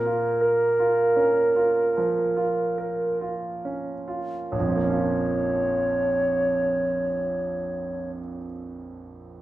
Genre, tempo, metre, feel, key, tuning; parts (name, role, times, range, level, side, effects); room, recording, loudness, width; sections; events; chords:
classical, romantic duo for flute and grand piano; 45-55 BPM; 4/4; rubato; Bb minor; A4 = 440 Hz
concert flute; melody; 0.0-8.1 s; Bb4 to Db5; -22 LUFS; right 1 dB
clear grand piano; accompaniment; 0.0-9.4 s; Bb1 to Bb4; -28 LUFS; right 3 dB
wet recital hall reverb, RT60 1.3 s; -22 LUFS; side -15 dB against mid
0.0-4.5 A section; 4.5-9.4 B section
slowing down 0.0-4.5
0.0 Bbm